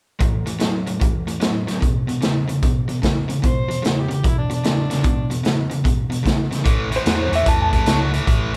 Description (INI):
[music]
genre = electric blues shuffle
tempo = 149 BPM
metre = 4/4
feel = swing 66% on 8ths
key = unclear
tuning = A4 = 441 Hz
[part]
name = cranked stack guitar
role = riff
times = 0.2-8.6 s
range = E2 to F#3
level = -25 LUFS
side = equal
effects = overdrive, spring reverb
[part]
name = raw garage drum kit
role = drums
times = 0.2-8.6 s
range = hi-hat, kick drum, snare drum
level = -22 LUFS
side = equal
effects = none
[part]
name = overdriven harmonica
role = second line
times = 3.5-5.3 s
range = D4 to C5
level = -30 LUFS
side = equal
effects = none
[part]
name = fingered electric bass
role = bass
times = 6.7-8.6 s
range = A1 to E2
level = -25 LUFS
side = equal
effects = none
[part]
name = electric guitar through a small old amp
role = melody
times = 7.0-8.0 s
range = C5 to A5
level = -23 LUFS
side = equal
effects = spring reverb
[sound]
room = light reverb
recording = band playing live in one room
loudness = -20 LUFS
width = mono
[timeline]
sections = 0.2-6.7 A section; 6.7-8.6 B section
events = none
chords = 0.2 A5; 1.8 E5; 6.7 A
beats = | 0.20 0.60 1.01 1.41 | 1.82 2.22 2.62 3.03 | 3.43 3.84 4.24 4.64 | 5.05 5.45 5.85 6.26 | 6.66 7.06 7.46 7.87 | 8.27